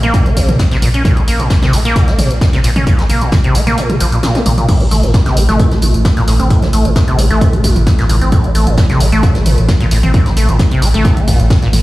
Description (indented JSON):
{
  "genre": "driving peak-time techno",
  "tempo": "132 BPM",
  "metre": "4/4",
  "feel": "straight",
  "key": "A phrygian",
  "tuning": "A4 = 440 Hz",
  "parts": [
    { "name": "acid bass, saw", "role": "riff", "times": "0.0-11.8 s", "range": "A2 to Db4", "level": "-16 LUFS", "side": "equal", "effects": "lush chorus, sidechain pumping, digital delay" },
    { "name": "warm sub bass", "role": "bass", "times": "0.0-11.8 s", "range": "A1 to Bb1", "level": "-14 LUFS", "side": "equal", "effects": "overdrive, sidechain pumping, low-pass filter" },
    { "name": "punchy analog drum machine", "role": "drums", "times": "0.0-11.8 s", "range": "crash cymbal, hi-hat, tambourine, toms", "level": "-19 LUFS", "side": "right 1 dB", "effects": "overdrive, sidechain pumping on hats, sidechain pumping on toms, sidechain pumping on perc, sidechain pumping on cymbals" },
    { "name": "electronic kick drum", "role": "drums", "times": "0.1-11.6 s", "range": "none", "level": "-12 LUFS", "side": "equal", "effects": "none" },
    { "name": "vintage brush drum kit", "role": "drums", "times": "0.1-11.8 s", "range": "hi-hat, snare drum", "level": "-28 LUFS", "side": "left 1 dB", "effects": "high-pass filter on hats, high-pass filter on snare, high-pass filter on room" },
    { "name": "metallic inharmonic drone", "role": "drone", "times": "5.3-11.8 s", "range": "A2 to E3", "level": "-20 LUFS", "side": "right 1 dB", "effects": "chorus, built-in reverb, sidechain pumping" }
  ],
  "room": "little or no reverb",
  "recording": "played on a big sound system in a bare room, stone room reverb",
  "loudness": "-9 LUFS",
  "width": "side -18 dB against mid",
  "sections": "0.0-11.8 A section",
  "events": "kick drops out 3.8-4.7; drum fill 4.2-4.7",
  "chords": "0.0 N.C.; 4.7 A5"
}